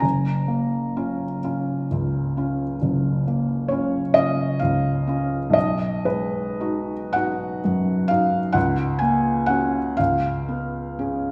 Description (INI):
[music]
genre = classical, romantic nocturne for solo piano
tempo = 36-45 BPM (dotted quarters)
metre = 12/8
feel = rubato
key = unclear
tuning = A4 = 439 Hz
[part]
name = felt-muted upright piano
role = solo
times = 0.0-11.3 s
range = F#1 to A#5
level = -23 LUFS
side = equal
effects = none
[sound]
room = wet recital hall reverb, RT60 1.5 s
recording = recorded in a church or concert hall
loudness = -23 LUFS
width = mono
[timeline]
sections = 0.0-11.3 A section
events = none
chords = 0.0 A#m/F#; 5.6 B6; 8.6 F#/C#; 10.0 C#7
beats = | 0.03 1.43 2.81 4.16 | 5.55 7.13 8.55 9.98